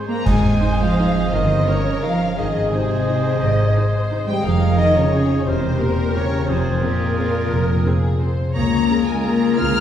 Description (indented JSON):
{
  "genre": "classical, orchestral ballroom waltz",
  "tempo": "174 BPM",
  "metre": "3/4",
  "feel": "uneven beats, rubato",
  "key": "Ab major",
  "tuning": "A4 = 440 Hz",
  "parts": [
    { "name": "clear oboe", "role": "second line", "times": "0.0-9.8 s", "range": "Ab4 to Eb5", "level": "-28 LUFS", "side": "right 1 dB", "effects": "none" },
    { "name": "rich studio violin section", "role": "second line", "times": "0.0-9.8 s", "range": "F4 to Eb5", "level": "-30 LUFS", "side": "left 2 dB", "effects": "none" },
    { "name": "warm clarinet", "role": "second line", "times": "0.0-9.8 s", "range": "F4 to C5", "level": "-31 LUFS", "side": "equal", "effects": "none" },
    { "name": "warm symphonic viola section", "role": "accompaniment", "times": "0.0-9.3 s", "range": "Bb3 to C5", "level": "-33 LUFS", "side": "right 1 dB", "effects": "none" },
    { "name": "concert harp", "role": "arpeggios", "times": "0.0-9.8 s", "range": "E2 to Bb5", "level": "-24 LUFS", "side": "left 1 dB", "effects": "none" },
    { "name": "warm symphonic violin section", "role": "melody", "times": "0.1-9.8 s", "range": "Bb4 to F6", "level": "-26 LUFS", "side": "left 1 dB", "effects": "none" },
    { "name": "hollow concert flute", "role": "second line", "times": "0.1-9.8 s", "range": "Bb4 to F6", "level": "-29 LUFS", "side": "left 1 dB", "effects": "none" },
    { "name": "mellow French horn section", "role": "sustained chords", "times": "0.1-9.8 s", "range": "Bb2 to F4", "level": "-24 LUFS", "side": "left 4 dB", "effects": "none" },
    { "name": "rich symphonic cello section", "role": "bass", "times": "0.1-9.8 s", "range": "Bb2 to F4", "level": "-25 LUFS", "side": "right 2 dB", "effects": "none" },
    { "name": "rich symphonic double bass section", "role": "bass", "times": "0.3-9.8 s", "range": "E1 to Db2", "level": "-23 LUFS", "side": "right 2 dB", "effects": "none" },
    { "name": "clash cymbals and concert bass drum", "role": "percussion", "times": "0.3-0.9 s", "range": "none", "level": "-25 LUFS", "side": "right 1 dB", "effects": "none" },
    { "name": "timpani", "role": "percussion", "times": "0.3-0.8 s", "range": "Ab2", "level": "-25 LUFS", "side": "left 2 dB", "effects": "none" }
  ],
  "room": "wet scoring stage reverb, RT60 1.5 s",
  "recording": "heard from further back in the room",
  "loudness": "-16 LUFS",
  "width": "side -10 dB against mid",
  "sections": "0.3-9.8 A section",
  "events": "band accent 0.3-0.6",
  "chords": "0.3 Ab; 1.3 Eb7/G; 2.4 Ab; 4.4 Fm7; 5.5 C7/E; 6.5 Fm; 8.6 Bbm7/Db"
}